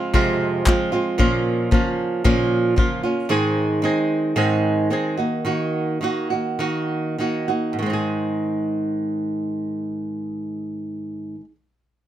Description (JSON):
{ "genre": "acoustic pop", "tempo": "96-114 BPM", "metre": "4/4", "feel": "straight", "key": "Ab mixolydian", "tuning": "A4 = 445 Hz", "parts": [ { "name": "flamenco guitar", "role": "accompaniment", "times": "0.0-11.6 s", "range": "F2 to Ab4", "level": "-20 LUFS", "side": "right 1 dB", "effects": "none" }, { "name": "modern studio drum kit", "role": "drums", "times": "0.1-2.9 s", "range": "handclaps, kick drum", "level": "-21 LUFS", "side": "left 1 dB", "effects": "none" } ], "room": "little or no reverb", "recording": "close, detailed microphones", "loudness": "-19 LUFS", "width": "side -11 dB against mid", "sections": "0.0-7.8 A section; 7.8-12.1 B section", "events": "slowing down 3.3-7.8", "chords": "0.0 Fm; 1.2 Bbm; 3.3 Ab; 5.2 Ebm; 7.8 Ab", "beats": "0.14 0.67 | 1.20 1.72 2.25 2.78 | 3.31 3.83 4.37 4.91 | 5.46 6.02 6.60 7.19 | 7.80 8.42 9.04 9.66 | 10.29 10.91 11.53" }